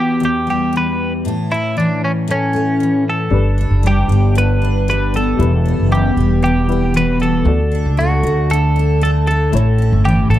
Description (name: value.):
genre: acoustic pop.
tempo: 116 BPM.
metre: 4/4.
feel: swing 55% on 16ths.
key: unclear.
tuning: A4 = 440 Hz.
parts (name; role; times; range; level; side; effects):
twelve-string electric guitar; melody; 0.0-10.4 s; C#4 to B4; -20 LUFS; equal; spring reverb.
picked steel-string acoustic guitar; accompaniment; 0.0-10.4 s; E2 to F#4; -18 LUFS; left 1 dB; double-tracked left and right.
clear upright piano; accompaniment; 3.3-10.4 s; G3 to D5; -26 LUFS; left 7 dB; none.
upright bass; bass; 3.3-10.4 s; E1 to D2; -14 LUFS; equal; none.
room: little or no reverb.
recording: dry, close 1970s-style studio recording.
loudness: -13 LUFS.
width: side -13 dB against mid.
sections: 0.0-3.3 A section; 3.3-10.4 B section.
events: none.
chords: 0.0 Emadd9; 1.2 A; 3.3 G; 5.4 Em; 7.5 D; 9.5 A.